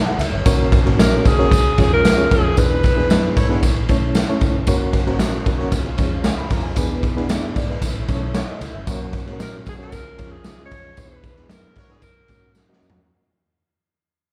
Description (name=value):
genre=uptempo 1960s-style soul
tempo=114 BPM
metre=4/4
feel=straight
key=F# major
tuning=A4 = 440 Hz
part: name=reed electric piano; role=accompaniment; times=0.0-13.0 s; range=G#3 to B5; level=-26 LUFS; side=equal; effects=fast tremolo, plate reverb
part: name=vintage muted fingered electric bass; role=bass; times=0.2-13.0 s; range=F#1 to A#2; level=-26 LUFS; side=equal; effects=none
part: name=raw garage drum kit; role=drums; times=0.2-13.0 s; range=hi-hat, kick drum, ride cymbal, snare drum, toms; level=-21 LUFS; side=equal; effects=none
part: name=tambourine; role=percussion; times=0.2-12.9 s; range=none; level=-38 LUFS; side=equal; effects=none
part: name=warm alto saxophone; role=melody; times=1.0-3.6, 9.4-12.8 s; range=G#4 to C#5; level=-23 LUFS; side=equal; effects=plate reverb
part: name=warm horn section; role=second line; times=3.4-3.7, 11.8-12.1 s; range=E4 to C#5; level=-31 LUFS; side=equal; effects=plate reverb, slapback echo
part: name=overdriven tonewheel organ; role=sustained chords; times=4.7-13.1 s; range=E3 to F#4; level=-36 LUFS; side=equal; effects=slow rotary speaker, chorus vibrato, plate reverb
room=moderate club reverb, RT60 0.7 s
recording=live gig heard through the venue's PA, recital hall reverb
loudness=-18 LUFS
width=mono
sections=0.0-13.1 A section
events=fade-out 1.3-13.1; band accent 2.6-4.7, 11.0-13.1; drum fill 12.6-13.1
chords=0.5 F#; 1.5 C#; 2.6 E7; 3.6 A; 4.7 F#; 5.7 C#; 6.8 E7; 7.8 A; 8.9 F#; 9.9 C#; 11.0 E7; 12.0 F#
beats=| 0.47 1.00 1.52 2.05 | 2.58 3.10 3.63 4.15 | 4.68 5.20 5.73 6.25 | 6.78 7.30 7.83 8.35 | 8.88 9.40 9.93 10.45 | 10.98 11.50 12.03 12.56